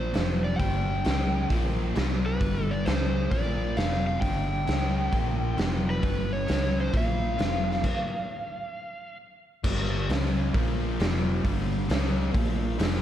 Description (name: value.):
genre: blues rock power trio and southern rock.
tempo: 133 BPM.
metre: 4/4.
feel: swing 66% on 8ths.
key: unclear.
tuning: A4 = 435 Hz.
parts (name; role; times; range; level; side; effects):
overdriven slide guitar; melody; 0.0-9.2 s; B4 to G5; -32 LUFS; equal; none.
crunchy overdriven guitar; riff; 0.0-13.0 s; F2 to C#4; -30 LUFS; equal; slapback echo.
vintage muted fingered electric bass; bass; 0.0-13.0 s; F1 to C#2; -29 LUFS; equal; none.
raw garage drum kit; drums; 0.1-12.9 s; crash cymbal, hi-hat, kick drum, snare drum; -28 LUFS; equal; none.
room: light reverb, small room ambience.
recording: none.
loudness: -24 LUFS.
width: side -11 dB against mid.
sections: 0.0-9.6 A section; 9.6-13.0 B section.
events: stop 7.8-9.6.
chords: 0.1 F5; 0.6 G5; 1.1 C#5; 1.5 Bb5; 2.0 C5; 2.4 G; 2.9 C#5; 3.3 Bb5; 3.8 F5; 4.2 G5; 4.7 C#5; 5.1 Bb5; 5.6 F5; 6.0 G; 6.5 C#5; 6.9 Bb5; 7.4 F5; 7.8 N.C.; 9.6 G5; 10.1 C#5; 10.5 Bb5; 11.0 F5; 11.4 G5; 11.9 C#5; 12.3 Bb5.